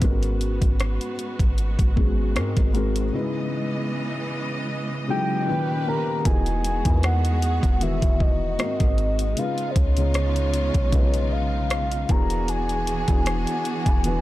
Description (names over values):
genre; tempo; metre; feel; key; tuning
contemporary R&B; 77 BPM; 4/4; swing 54% on 16ths; unclear; A4 = 440 Hz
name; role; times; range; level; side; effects
felt-muted upright piano; accompaniment; 0.0-14.2 s; G#2 to C#5; -28 LUFS; left 2 dB; none
warm symphonic string section; sustained chords; 0.0-14.2 s; A#2 to D#5; -32 LUFS; right 2 dB; sidechain pumping
soft 808-style bass; bass; 0.0-14.2 s; E1 to G#2; -24 LUFS; equal; none
smooth R&B drum kit; drums; 0.0-14.2 s; hi-hat, kick drum, rim click; -22 LUFS; equal; none
soft octave-layered synth lead; melody; 5.1-14.2 s; B#4 to A#5; -28 LUFS; equal; chorus
room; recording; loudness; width
little or no reverb; dark, warm production; -20 LUFS; side -16 dB against mid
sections
0.0-6.3 A section; 6.3-14.2 B section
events
break 3.1-6.3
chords
0.0 G#m11; 2.4 G#7; 3.1 C#m9; 5.5 D#7b13; 6.3 Emaj7; 8.6 G#7; 9.4 C#7; 12.1 E7